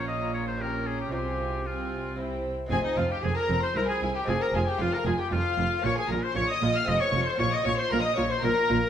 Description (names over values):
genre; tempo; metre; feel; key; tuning
classical, baroque-style concerto movement with solo episodes; 115 BPM; 3/4; straight; F minor; A4 = 440 Hz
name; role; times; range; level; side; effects
clear oboe; melody; 0.0-8.9 s; Eb4 to F5; -30 LUFS; left 2 dB; none
rich symphonic violin section; melody; 0.0-8.9 s; Eb5 to F6; -33 LUFS; left 5 dB; none
rich chamber violin section; second line; 0.0-8.9 s; Eb4 to F5; -32 LUFS; left 1 dB; none
lute; accompaniment; 0.0-8.9 s; F2 to G4; -35 LUFS; left 1 dB; none
rich chamber viola section; accompaniment; 0.0-8.8 s; C4 to F4; -36 LUFS; right 2 dB; none
rich chamber double bass section; bass; 0.0-8.8 s; F1 to C2; -32 LUFS; right 3 dB; none
warm chamber cello section; bass; 0.0-8.8 s; C2 to C3; -32 LUFS; right 2 dB; none
room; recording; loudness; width
wet recital hall reverb, RT60 1.4 s; none; -24 LUFS; side -9 dB against mid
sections
0.0-2.7 A section; 2.7-8.9 B section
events
none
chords
0.0 Bbm; 0.6 Gdim/Bb; 1.1 Fm/C; 2.2 C; 2.7 Fm; 3.8 C; 4.3 Fm; 5.8 Bbm; 6.9 F; 7.4 Bbm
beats
0.08 0.60 | 1.13 1.66 2.19 | 2.72 3.24 3.76 | 4.28 4.80 5.32 | 5.84 6.36 6.88 | 7.39 7.91 8.43